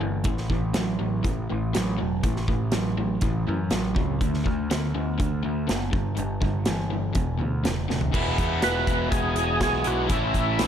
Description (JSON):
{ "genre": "classic rock", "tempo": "122 BPM", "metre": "4/4", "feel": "straight", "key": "A major", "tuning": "A4 = 440 Hz", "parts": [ { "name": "overdriven semi-hollow guitar", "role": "riff", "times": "0.0-10.7 s", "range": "E2 to E4", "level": "-30 LUFS", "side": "right 10 dB", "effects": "none" }, { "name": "raw garage guitar", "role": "riff", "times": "0.0-10.7 s", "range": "E2 to E4", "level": "-30 LUFS", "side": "left 11 dB", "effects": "overdrive" }, { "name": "growling picked electric bass", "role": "bass", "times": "0.0-10.7 s", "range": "E1 to F#2", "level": "-28 LUFS", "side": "equal", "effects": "overdrive" }, { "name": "big rock drum kit", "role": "drums", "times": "0.2-10.7 s", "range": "crash cymbal, hi-hat, kick drum, snare drum, toms", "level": "-28 LUFS", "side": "equal", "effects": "none" }, { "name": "overdriven tonewheel organ", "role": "melody", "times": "8.6-10.7 s", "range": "E4 to B4", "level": "-26 LUFS", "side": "right 1 dB", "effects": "slow rotary speaker, chorus vibrato" } ], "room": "studio reverb", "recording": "none", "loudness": "-23 LUFS", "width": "side -9 dB against mid", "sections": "0.0-8.1 A section; 8.1-10.7 B section", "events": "drum fill 7.9", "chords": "0.3 A5; 4.2 D; 5.9 G5; 7.2 E5; 8.1 E; 10.1 A" }